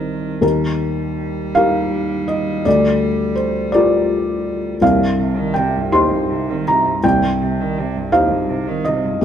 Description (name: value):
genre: neoclassical piano and strings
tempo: 55 BPM (dotted quarters)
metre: 6/8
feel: rubato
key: C minor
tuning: A4 = 440 Hz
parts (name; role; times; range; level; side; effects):
- rich cello; second line; 0.0-9.2 s; Eb2 to G3; -24 LUFS; right 4 dB; none
- felt-muted upright piano; accompaniment; 0.0-9.2 s; C2 to C6; -16 LUFS; left 1 dB; none
room: moderate stone room reverb, RT60 1.1 s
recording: band playing live in one room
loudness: -15 LUFS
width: side -9 dB against mid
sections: 0.0-9.2 A section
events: none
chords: 0.4 Eb; 2.7 Bb6/D; 4.8 Cm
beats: | 0.42 1.56 | 2.65 3.73 | 4.82 5.93 | 7.03 8.13 | 9.23